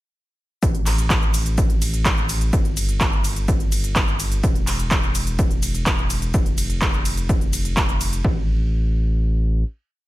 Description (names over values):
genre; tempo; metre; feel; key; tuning
EDM, festival progressive house; 126 BPM; 4/4; straight; unclear; A4 = 440 Hz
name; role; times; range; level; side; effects
saturated sub bass; bass; 0.6-9.6 s; E1 to A1; -22 LUFS; equal; sidechain pumping
big-room dance drum kit; drums; 0.6-8.2 s; handclaps, hi-hat, ride cymbal, shaker; -25 LUFS; equal; overdrive
electronic kick drum; drums; 0.6-8.3 s; none; -20 LUFS; equal; overdrive
room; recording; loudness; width
little or no reverb; none; -18 LUFS; side -17 dB against mid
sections
0.6-8.2 drop; 8.2-10.1 final note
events
drop 0.6-8.2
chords
none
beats
| 0.63 1.10 1.58 2.06 | 2.53 3.01 3.48 3.96 | 4.44 4.91 5.39 5.87 | 6.34 6.82 7.29 7.77 | 8.25 8.72 9.20